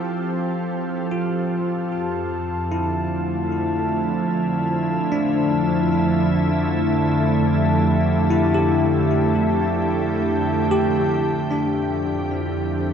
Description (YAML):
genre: ambient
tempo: 75 BPM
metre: 3/4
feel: straight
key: F major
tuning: A4 = 440 Hz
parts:
  - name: soft additive organ-like pad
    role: sustained chords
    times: 0.0-12.9 s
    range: F2 to A4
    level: -20 LUFS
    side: right 1 dB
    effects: ensemble chorus, built-in reverb, shimmer reverb
  - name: bell-like tine electric piano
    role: arpeggios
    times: 0.0-12.9 s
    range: D4 to G4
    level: -26 LUFS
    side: left 3 dB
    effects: wide subtle chorus, ping-pong delay, shimmer reverb
  - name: glass harmonica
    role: texture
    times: 1.9-11.5 s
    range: A5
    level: -29 LUFS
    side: equal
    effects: shimmer reverb
  - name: rich symphonic cello section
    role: bass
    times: 11.5-12.9 s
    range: F2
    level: -29 LUFS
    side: equal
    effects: none
room: wet cathedral reverb, RT60 5.1 s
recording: in a vast, echoing space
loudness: -18 LUFS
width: side -7 dB against mid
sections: 0.0-11.5 A section; 11.5-12.9 B section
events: fade-in on tine electric piano 0.0-11.5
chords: 0.0 Fmaj7